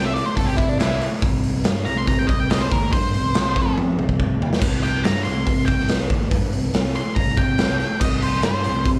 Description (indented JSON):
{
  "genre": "blues rock power trio and southern rock",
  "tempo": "141 BPM",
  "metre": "4/4",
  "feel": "straight",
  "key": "unclear",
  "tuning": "A4 = 440 Hz",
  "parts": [
    { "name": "octave-fuzz lead guitar", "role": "melody", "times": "0.0-8.9 s", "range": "D4 to C6", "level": "-27 LUFS", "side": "equal", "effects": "distortion, slapback echo, plate reverb" },
    { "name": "sustaining fretless electric bass", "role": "bass", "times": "0.0-9.0 s", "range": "C2 to C3", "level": "-25 LUFS", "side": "equal", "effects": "subtle chorus" },
    { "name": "raw garage drum kit", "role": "drums", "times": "0.2-9.0 s", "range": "crash cymbal, hi-hat, kick drum, snare drum, toms", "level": "-23 LUFS", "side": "equal", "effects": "none" }
  ],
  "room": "light reverb",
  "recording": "live gig heard through the venue's PA, club reverb",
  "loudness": "-20 LUFS",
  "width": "mono",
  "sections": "0.0-4.6 A section; 4.6-9.0 A section",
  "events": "lead electric guitar solo 0.0-9.0; drum fill 3.8-4.6",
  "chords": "0.0 N.C.; 4.6 C5",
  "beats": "0.37 0.80 | 1.22 1.65 2.07 2.50 | 2.92 3.35 3.77 4.19 | 4.62 5.04 5.47 5.89 | 6.32 6.74 7.16 7.59 | 8.01 8.44 8.86"
}